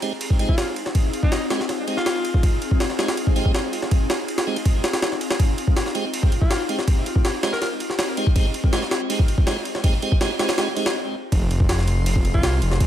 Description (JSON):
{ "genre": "drum and bass, jungle", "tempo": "162 BPM", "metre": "4/4", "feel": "straight", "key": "F minor", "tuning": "A4 = 442 Hz", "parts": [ { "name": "ethereal airy pad", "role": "sustained chords", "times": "0.0-12.9 s", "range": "C4 to Ab4", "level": "-29 LUFS", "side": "left 3 dB", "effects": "ensemble chorus, built-in reverb" }, { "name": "tonewheel organ", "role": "stabs", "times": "0.0-10.9 s", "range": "Ab3 to G4", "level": "-28 LUFS", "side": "right 3 dB", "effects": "slow rotary speaker, dub echo" }, { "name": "jungle sampler-style drum kit", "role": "drums", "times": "0.0-12.9 s", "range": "kick drum, ride cymbal, snare drum", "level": "-20 LUFS", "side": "equal", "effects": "overdrive" }, { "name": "bright alto saxophone", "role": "melody", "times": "0.5-2.5, 6.4-7.7, 12.3-12.6 s", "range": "Eb4 to Bb4", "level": "-31 LUFS", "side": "left 1 dB", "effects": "dub echo" }, { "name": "detuned saw bass", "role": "bass", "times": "11.3-12.9 s", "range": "F1 to C2", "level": "-20 LUFS", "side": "equal", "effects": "none" }, { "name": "drifting glass-harmonics texture", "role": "texture", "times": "11.5-12.9 s", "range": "C6 to C7", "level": "-38 LUFS", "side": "left 1 dB", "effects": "chorus, built-in reverb" } ], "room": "light reverb", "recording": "echo-heavy mix", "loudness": "-19 LUFS", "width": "side -11 dB against mid", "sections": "0.0-11.3 A section; 11.3-12.9 B section", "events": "build-up 0.0-11.3; stop 11.0-11.3; drop 11.3-12.9", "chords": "0.0 Fm7" }